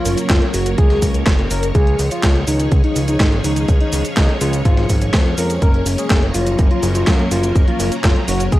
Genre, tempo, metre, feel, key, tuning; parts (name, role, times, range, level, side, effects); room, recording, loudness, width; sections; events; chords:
italo disco; 124 BPM; 4/4; straight; A4 = 438 Hz
soft octave-layered synth lead; melody; 0.0-8.6 s; Eb4 to Bb4; -22 LUFS; left 1 dB; chorus, tape echo
string machine, full ensemble; sustained chords; 0.0-8.6 s; F3 to Db5; -23 LUFS; equal; ensemble chorus
fat analog bass; bass; 0.1-8.6 s; Gb1 to Gb2; -20 LUFS; equal; tube saturation
gated 80s digital drum machine; drums; 0.1-8.6 s; cabasa, handclaps, hi-hat, snare drum; -22 LUFS; equal; gated reverb, gated reverb snare, overdrive
electronic kick drum; drums; 0.3-8.6 s; -15 LUFS; equal
little or no reverb; dry, gritty hardware recording, transformer saturation; -13 LUFS; side -16 dB against mid
0.0-8.6 A section
0.0 Gb; 1.8 Db; 5.6 Gb